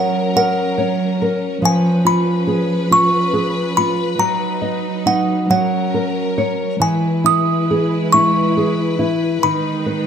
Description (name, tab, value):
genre	children's music, lullaby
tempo	46 BPM (dotted quarters)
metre	6/8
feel	rubato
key	unclear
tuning	A4 = 441 Hz
part	music box	melody	0.0-10.1 s	F#5 to D#6	-18 LUFS	equal	none
part	nylon-string guitar	accompaniment	0.0-10.1 s	D#3 to D#5	-18 LUFS	equal	none
part	rich studio string section	sustained chords	0.0-10.1 s	D#3 to B4	-22 LUFS	right 1 dB	none
room	moderate recital hall reverb, RT60 1.6 s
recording	close, detailed microphones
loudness	-15 LUFS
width	side -8 dB against mid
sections	0.0-10.1 A section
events	none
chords	0.0 F#; 1.6 C#7/E#; 4.2 B/F#; 5.5 F#; 6.8 E; 9.4 G#m/D#